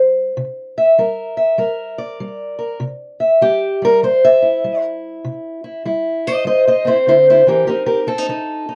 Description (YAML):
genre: acoustic country blues, solo or duo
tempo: 98 BPM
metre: 4/4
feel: swing 63% on 8ths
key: C mixolydian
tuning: A4 = 438 Hz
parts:
  - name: fingerpicked steel-string acoustic guitar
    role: solo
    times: 0.0-8.8 s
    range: C3 to E5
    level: -16 LUFS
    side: equal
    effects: slapback echo
room: moderate booth ambience, RT60 0.2 s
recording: dry, close 1970s-style studio recording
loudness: -15 LUFS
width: mono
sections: 0.0-8.8 A section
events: steel-string acoustic guitar solo 0.0-8.8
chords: 0.0 C7; 7.7 F7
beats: | 0.35 0.97 1.58 2.19 | 2.80 3.41 4.03 4.64 | 5.25 5.86 6.47 7.08 | 7.69 8.30